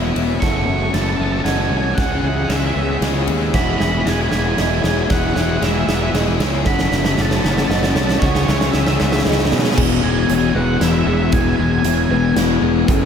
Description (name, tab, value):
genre	post-rock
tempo	116 BPM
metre	3/4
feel	straight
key	E major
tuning	A4 = 439 Hz
part	clean electric guitar	arpeggios	0.0-13.1 s	E2 to F#4	-26 LUFS	equal	none
part	felt-muted upright piano	arpeggios	0.0-13.1 s	G#4 to F#5	-29 LUFS	right 7 dB	wide subtle chorus, analog delay
part	crunchy overdriven guitar	riff	0.0-13.1 s	E2 to A4	-20 LUFS	left 6 dB	wide subtle chorus
part	fuzz fingered electric bass	bass	0.0-13.1 s	E1 to B2	-20 LUFS	right 1 dB	overdrive
part	huge arena drum kit	drums	0.2-13.0 s	crash cymbal, hi-hat, kick drum, ride cymbal, snare drum	-21 LUFS	right 1 dB	none
part	octave-fuzz lead guitar	melody	0.4-12.3 s	C#5 to C#6	-24 LUFS	right 3 dB	distortion, analog delay
room	moderate huge ambient reverb, RT60 7.2 s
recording	dreamy mix soaked in reverb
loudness	-15 LUFS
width	side -7 dB against mid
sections	0.0-9.8 A section; 9.8-13.1 B section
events	build-up 0.0-9.8; drum fill 0.0-9.8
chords	0.4 F#m; 2.0 C#m7; 3.5 E; 6.7 F#m; 8.2 C#m7; 9.8 E